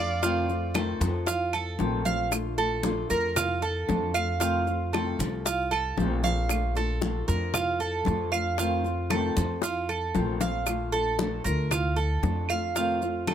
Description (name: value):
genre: latin, Cuban son and guajira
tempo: 115 BPM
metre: 4/4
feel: straight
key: Bb major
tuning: A4 = 440 Hz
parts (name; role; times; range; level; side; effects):
- warm violin; melody; 0.0-0.8 s; D5; -35 LUFS; left 1 dB; none
- nylon-string guitar; accompaniment; 0.0-13.3 s; C3 to F4; -32 LUFS; left 5 dB; none
- Cuban tres; arpeggios; 0.0-13.3 s; F4 to F5; -28 LUFS; right 4 dB; none
- upright bass; bass; 0.0-13.3 s; Bb1 to F2; -30 LUFS; equal; none
- bongos; percussion; 0.2-13.3 s; none; -33 LUFS; left 11 dB; none
- congas; percussion; 0.2-13.3 s; none; -34 LUFS; left 2 dB; none
- maracas; percussion; 0.2-13.3 s; none; -36 LUFS; right 8 dB; none
- claves; percussion; 0.8-13.3 s; none; -33 LUFS; right 6 dB; none
room: little or no reverb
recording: close, detailed microphones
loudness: -25 LUFS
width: side -9 dB against mid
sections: 0.0-2.3 A section; 2.3-13.3 B section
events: violin solo 0.0-2.3; drum fill 9.6-10.7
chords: 0.2 F7; 2.3 Bbmaj7; 4.4 F7; 6.5 Bbmaj7; 8.6 F7; 10.7 Bbmaj7; 12.8 F7